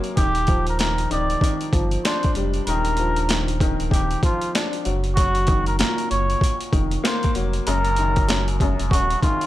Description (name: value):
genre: hip hop, boom-bap hip-hop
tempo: 96 BPM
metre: 4/4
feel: swing 61% on 16ths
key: unclear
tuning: A4 = 440 Hz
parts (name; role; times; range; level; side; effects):
- warm upright piano; accompaniment; 0.0-9.5 s; Gb2 to D4; -26 LUFS; left 2 dB; cassette tape, high-pass filter, low-pass filter
- boom bap sampler-style drum kit; drums; 0.0-9.5 s; hi-hat, kick drum, snare drum; -22 LUFS; equal; none
- trumpet with cup mute; melody; 0.2-9.5 s; F4 to D5; -25 LUFS; equal; high-pass filter, low-pass filter, tape echo
- sub bass with octave; bass; 0.2-9.2 s; D1 to G1; -24 LUFS; equal; none
room: little or no reverb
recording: dry, gritty hardware recording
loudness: -18 LUFS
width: side -14 dB against mid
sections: 0.0-9.5 A section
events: none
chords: 0.2 Ebmaj9; 4.9 Gb6